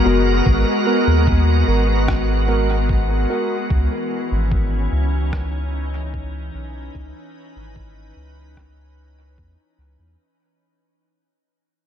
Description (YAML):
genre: ambient dub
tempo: 74 BPM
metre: 4/4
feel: straight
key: unclear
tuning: A4 = 440 Hz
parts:
  - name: soft additive organ-like pad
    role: sustained chords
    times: 0.0-10.2 s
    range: E3 to B4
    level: -22 LUFS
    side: left 1 dB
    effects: ensemble chorus, built-in reverb
  - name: tine electric piano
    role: stabs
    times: 0.1-3.6 s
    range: B3 to A#4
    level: -25 LUFS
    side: right 3 dB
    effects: auto-pan, dub echo
  - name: soft dub sub bass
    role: bass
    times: 0.1-10.2 s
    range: F#1 to E2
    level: -19 LUFS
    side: equal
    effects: tube saturation
  - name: electronic kick drum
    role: drums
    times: 0.5-9.5 s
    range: none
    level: -21 LUFS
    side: equal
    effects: none
  - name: electronic rim click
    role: drums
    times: 2.1-8.7 s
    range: none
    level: -31 LUFS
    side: equal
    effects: none
room: little or no reverb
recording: echo-heavy mix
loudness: -16 LUFS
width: side -9 dB against mid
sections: 0.0-10.2 A section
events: fade-out 0.0-10.2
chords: 0.0 G#m9; 3.7 C#m9